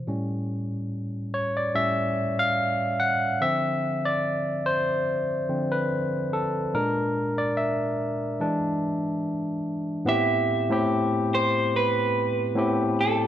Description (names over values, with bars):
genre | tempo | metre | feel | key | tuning
soul | 72 BPM | 4/4 | swing 54% on 16ths | A minor from 10.1 s | A4 = 440 Hz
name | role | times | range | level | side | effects
barky tine electric piano | accompaniment | 0.0-13.3 s | A2 to F#5 | -24 LUFS | left 1 dB | overdrive
electric guitar through a small old amp | melody | 10.1-13.3 s | A4 to E5 | -24 LUFS | right 3 dB | spring reverb, analog delay
room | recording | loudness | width
light reverb | none | -23 LUFS | side -11 dB against mid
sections
0.0-10.1 A section; 10.1-13.3 B section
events
tine electric piano solo 0.0-10.1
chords
0.1 A7; 3.4 Dm7; 6.7 Bb7#11; 8.4 E7; 10.1 Am7